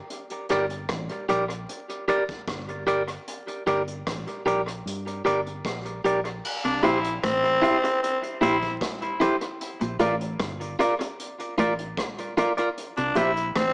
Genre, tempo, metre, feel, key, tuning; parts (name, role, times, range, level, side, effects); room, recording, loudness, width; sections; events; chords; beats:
roots reggae; 76 BPM; 4/4; straight; G dorian; A4 = 439 Hz
vintage brush drum kit; drums; 0.1-13.7 s; crash cymbal, hi-hat, kick drum, rim click; -34 LUFS; equal; analog delay
electric guitar at the edge of break-up; accompaniment; 0.5-13.3 s; E4 to E5; -26 LUFS; equal; analog delay
vintage muted fingered electric bass; bass; 0.5-13.7 s; G1 to G2; -35 LUFS; equal
growling tenor saxophone; second line; 6.6-13.7 s; C4 to E4; -24 LUFS; equal; analog delay
clean electric guitar; riff; 6.6-13.7 s; G2 to C3; -32 LUFS; equal
bongos; percussion; 6.8-13.3 s; -30 LUFS; equal
moderate plate reverb, RT60 1.8 s; echo-heavy mix, vinyl crackle, small speaker sound; -23 LUFS; side -26 dB against mid
0.0-6.4 A section; 6.4-13.7 B section
0.0 Gm; 6.4 C; 9.6 Bb; 12.8 C
| 0.10 0.90 1.69 2.48 | 3.28 4.07 4.86 5.65 | 6.45 7.24 8.03 8.82 | 9.61 10.40 11.19 11.98 | 12.77 13.56